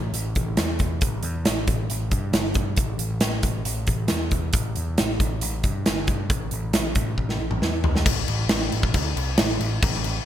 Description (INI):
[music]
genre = hard rock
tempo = 136 BPM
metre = 4/4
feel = straight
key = unclear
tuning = A4 = 439 Hz
[part]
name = overdriven picked electric bass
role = bass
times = 0.0-10.2 s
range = G1 to G2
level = -27 LUFS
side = equal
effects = none
[part]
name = big rock drum kit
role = drums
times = 0.1-10.1 s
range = crash cymbal, hi-hat, kick drum, snare drum, toms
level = -23 LUFS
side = equal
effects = gated reverb
[sound]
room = light reverb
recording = bright 1980s-style digital production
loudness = -21 LUFS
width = side -11 dB against mid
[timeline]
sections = 0.0-8.1 A section; 8.1-10.3 B section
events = drum fill 7.2-8.1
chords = none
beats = 0.14 0.58 | 1.02 1.46 1.90 2.34 | 2.78 3.22 3.66 4.10 | 4.54 4.98 5.42 5.86 | 6.30 6.74 7.18 7.62 | 8.06 8.50 8.94 9.38 | 9.81